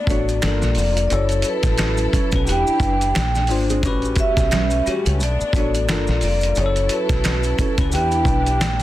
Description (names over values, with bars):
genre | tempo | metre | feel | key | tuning
R&B, neo-soul | 88 BPM | 4/4 | swing 57% on 16ths | unclear | A4 = 440 Hz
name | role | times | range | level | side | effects
vibraphone with soft mallets | melody | 0.0-8.8 s | B4 to G5 | -23 LUFS | right 1 dB | none
warm studio string section | sustained chords | 0.0-8.8 s | E3 to A4 | -30 LUFS | left 1 dB | none
nylon-string guitar | second line | 0.1-7.8 s | G3 to C#5 | -29 LUFS | right 6 dB | none
bell-like tine electric piano | accompaniment | 0.1-8.6 s | A3 to C#5 | -25 LUFS | left 4 dB | phaser
deep dub fingered electric bass | bass | 0.1-8.8 s | E1 to E2 | -21 LUFS | equal | none
dusty soul sampler-style drum kit | drums | 0.1-8.8 s | hi-hat, kick drum, snare drum | -22 LUFS | equal | none
maracas and finger snaps | percussion | 0.1-8.8 s | none | -34 LUFS | right 2 dB | none
room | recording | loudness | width
small room ambience | dense, heavily limited modern master | -17 LUFS | side -14 dB against mid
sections
0.0-8.8 A section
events
none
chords
0.4 Gm7; 1.1 F#m7; 2.5 Em9; 3.1 A#9; 3.8 A13; 5.2 Bm9; 5.9 Gm7; 6.6 F#m7; 7.9 Em7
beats
0.42 | 1.10 1.78 2.47 3.15 | 3.83 4.51 5.19 5.88 | 6.56 7.24 7.92 8.60